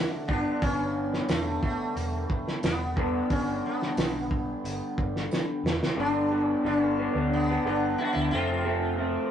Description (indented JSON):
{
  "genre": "psychedelic rock",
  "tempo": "90 BPM",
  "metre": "4/4",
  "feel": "straight",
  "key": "unclear",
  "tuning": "A4 = 442 Hz",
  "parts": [
    { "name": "sitar", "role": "melody", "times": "0.0-8.9 s", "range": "A3 to F#4", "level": "-31 LUFS", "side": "equal", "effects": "tape echo" },
    { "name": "hand-pumped harmonium", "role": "sustained chords", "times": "0.0-9.3 s", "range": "A4 to G5", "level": "-43 LUFS", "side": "right 4 dB", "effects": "none" },
    { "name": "electric guitar through a small old amp", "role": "riff", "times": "0.0-9.3 s", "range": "F2 to D4", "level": "-29 LUFS", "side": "left 1 dB", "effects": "phaser" },
    { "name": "hollow-body short-scale picked electric bass", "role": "bass", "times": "0.3-9.2 s", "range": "E1 to D2", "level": "-34 LUFS", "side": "equal", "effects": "none" },
    { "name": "cloth-damped thuddy drum kit", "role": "drums", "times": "0.3-6.0 s", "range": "hi-hat, kick drum, snare drum", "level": "-29 LUFS", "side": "right 1 dB", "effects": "none" },
    { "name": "tambourine", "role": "percussion", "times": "1.3-5.5 s", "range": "none", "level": "-52 LUFS", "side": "right 4 dB", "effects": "none" }
  ],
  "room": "moderate studio reverb, RT60 0.6 s",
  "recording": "rough rehearsal-room recording, nothing above 10.5 kHz",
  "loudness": "-25 LUFS",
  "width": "side -9 dB against mid",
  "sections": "0.0-6.0 A section; 6.0-9.3 B section",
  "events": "drum fill 5.3-6.0",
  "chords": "0.3 G; 8.3 F",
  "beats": "| 0.62 1.29 1.97 2.63 | 3.30 3.97 4.64 5.31 | 5.98 6.65 7.32 7.99 | 8.65"
}